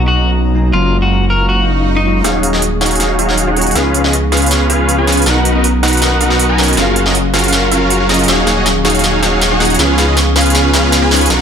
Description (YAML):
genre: future bass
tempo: 159 BPM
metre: 4/4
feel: half-time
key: Eb minor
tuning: A4 = 440 Hz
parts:
  - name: bell-like tine electric piano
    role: accompaniment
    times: 0.0-11.4 s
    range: F3 to A#5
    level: -19 LUFS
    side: left 1 dB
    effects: ensemble chorus, ping-pong delay
  - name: airy breathy pad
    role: sustained chords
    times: 0.0-11.4 s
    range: F#3 to D#6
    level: -23 LUFS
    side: right 1 dB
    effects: chorus
  - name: wide detuned saw bass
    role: bass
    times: 0.0-11.4 s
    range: Eb1 to Db2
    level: -16 LUFS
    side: equal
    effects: chorus
  - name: electric guitar at the edge of break-up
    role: melody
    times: 0.1-2.2 s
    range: Eb4 to Bb4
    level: -18 LUFS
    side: left 1 dB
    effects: tape echo
  - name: swell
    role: sound effects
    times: 1.6-2.2 s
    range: none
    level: -22 LUFS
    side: left 3 dB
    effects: none
  - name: dense compressed supersaw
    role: riff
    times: 2.2-11.4 s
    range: Db4 to Ab5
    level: -14 LUFS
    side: equal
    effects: low-pass filter, ping-pong delay
  - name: big-room dance drum kit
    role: drums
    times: 2.2-11.4 s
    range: hi-hat, snare drum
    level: -16 LUFS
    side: right 1 dB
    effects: high-pass filter on snare, high-pass filter on hats
room: moderate digital room reverb, RT60 1.2 s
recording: none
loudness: -10 LUFS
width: side -7 dB against mid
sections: 0.0-2.2 A section; 2.2-11.4 B section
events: swell 1.6-2.2; build-up 2.2-11.4; drum fill 2.2-11.4; filter sweep on supersaw synth 2.2-11.4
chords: 0.0 Bmaj7; 0.7 Gbmaj7; 2.2 Ebm11; 3.8 Db7; 5.3 Bmaj7; 6.8 Gbmaj7; 8.3 Ebm11; 9.8 Db7